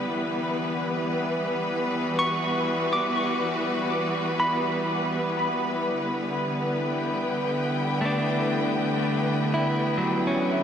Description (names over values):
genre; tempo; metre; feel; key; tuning
ambient; 61 BPM; 3/4; straight; E minor; A4 = 439 Hz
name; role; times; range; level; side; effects
clear studio string section; sustained chords; 0.0-10.6 s; D3 to G5; -26 LUFS; equal; shimmer reverb
clean electric guitar; arpeggios; 0.0-10.6 s; F#3 to D6; -28 LUFS; equal; diffuse ambient delay, shimmer reverb
pedal harmonium; drone; 0.0-10.6 s; E3 to B3; -32 LUFS; equal; none
room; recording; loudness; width
wet huge ambient reverb, RT60 7.6 s; cassette tape; -23 LUFS; side -8 dB against mid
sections
0.1-10.6 A section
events
none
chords
0.1 Emadd9; 6.0 G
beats
| 0.07 1.05 2.03 | 3.02 4.00 4.98 | 5.97 6.95 7.93 | 8.92 9.90